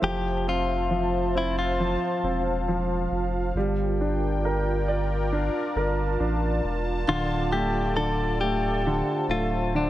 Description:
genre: pop.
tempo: 68 BPM.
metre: 4/4.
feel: straight.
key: F major.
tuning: A4 = 445 Hz.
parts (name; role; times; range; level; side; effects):
direct-recorded clean electric guitar; melody; 0.0-9.9 s; D4 to A4; -28 LUFS; left 3 dB; tape echo.
clear concert grand piano; accompaniment; 0.0-9.9 s; D3 to D5; -28 LUFS; equal; none.
sweeping resonant pad; sustained chords; 0.0-9.9 s; F4 to A5; -30 LUFS; right 1 dB; chorus.
saturated sub bass; bass; 0.0-9.9 s; D1 to A1; -28 LUFS; equal; none.
room: light reverb, digital ambience.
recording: none.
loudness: -23 LUFS.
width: side -14 dB against mid.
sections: 0.0-9.9 A section.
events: none.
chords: 0.0 Fmaj7; 3.6 Gm7; 7.1 Dm.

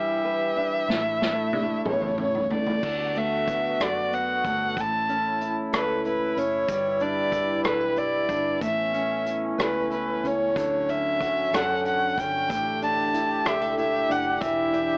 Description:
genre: six-eight pop ballad.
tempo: 62 BPM (dotted quarters).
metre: 6/8.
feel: straight.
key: D major.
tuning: A4 = 441 Hz.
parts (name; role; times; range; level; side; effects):
warm violin; melody; 0.0-15.0 s; B4 to A5; -25 LUFS; equal; none.
nylon-string guitar; accompaniment; 0.0-15.0 s; A2 to B4; -29 LUFS; equal; none.
clear brass ensemble; sustained chords; 0.0-15.0 s; C#3 to B4; -31 LUFS; equal; none.
vintage muted fingered electric bass; bass; 0.0-15.0 s; E1 to F#2; -42 LUFS; equal; none.
unplugged drum kit; drums; 0.9-14.9 s; crash cymbal, hi-hat, kick drum, rim click, snare drum, toms; -30 LUFS; equal; none.
room: light reverb.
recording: cassette tape, AM radio sound.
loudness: -22 LUFS.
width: side -39 dB against mid.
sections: 0.0-2.8 A section; 2.8-15.0 B section.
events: drum fill 0.9-2.8.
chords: 0.0 Em7; 0.9 Asus4; 1.9 A; 2.8 D6; 4.8 A; 6.7 G6; 8.6 Aadd9; 10.6 Dmaj7; 12.5 A7sus4; 14.4 Em7.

